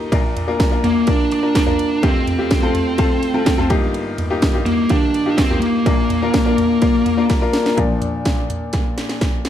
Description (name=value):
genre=piano-driven pop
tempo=125 BPM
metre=4/4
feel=straight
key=unclear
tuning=A4 = 440 Hz
part: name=clear upright piano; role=accompaniment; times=0.0-9.5 s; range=F1 to Bb4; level=-21 LUFS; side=left 3 dB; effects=none
part: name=house drum kit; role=drums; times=0.1-9.5 s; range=hi-hat, kick drum, ride cymbal, snare drum, toms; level=-18 LUFS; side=right 1 dB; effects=overdrive
part: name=high-gain lead guitar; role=melody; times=0.8-7.2 s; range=Bb3 to D4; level=-18 LUFS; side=equal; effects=distortion
room=light reverb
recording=none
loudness=-15 LUFS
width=side -10 dB against mid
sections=0.0-7.8 A section; 7.8-9.5 B section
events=drum fill 7.3-7.8, 8.7-9.5; upright piano solo 7.8-9.5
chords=0.1 Bb; 2.0 Fadd9; 3.7 Ebadd9/G; 5.9 Bb